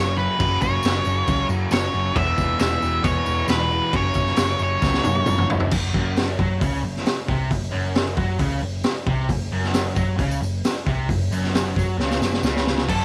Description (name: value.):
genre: garage rock duo or trio.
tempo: 134 BPM.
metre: 4/4.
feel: straight.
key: unclear.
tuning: A4 = 440 Hz.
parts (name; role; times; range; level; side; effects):
octave-fuzz lead guitar; melody; 0.0-5.5, 12.9-13.0 s; A4 to E5; -26 LUFS; equal; distortion, tape echo.
fuzz guitar; riff; 0.0-13.0 s; E2 to F#3; -29 LUFS; equal; distortion.
hollow-body short-scale picked electric bass; bass; 0.0-13.0 s; E1 to F#2; -27 LUFS; equal; none.
tambourine; percussion; 0.2-5.6, 9.6-12.8 s; none; -44 LUFS; equal; none.
raw garage drum kit; drums; 0.4-13.0 s; crash cymbal, hi-hat, kick drum, snare drum, toms; -26 LUFS; equal; none.
room: small room ambience.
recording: none.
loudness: -22 LUFS.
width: mono.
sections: 0.0-5.7 A section; 5.7-12.9 B section.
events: drum fill 4.8-5.7, 12.0-12.9.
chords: 0.0 F#5; 2.2 E5; 3.9 F#5.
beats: | 0.39 0.83 1.27 1.72 | 2.16 2.60 3.04 3.49 | 3.93 4.38 4.82 5.27 | 5.71 6.16 6.60 7.05 | 7.50 7.94 8.39 8.84 | 9.29 9.73 10.18 10.63 | 11.08 11.53 11.98 12.43 | 12.88.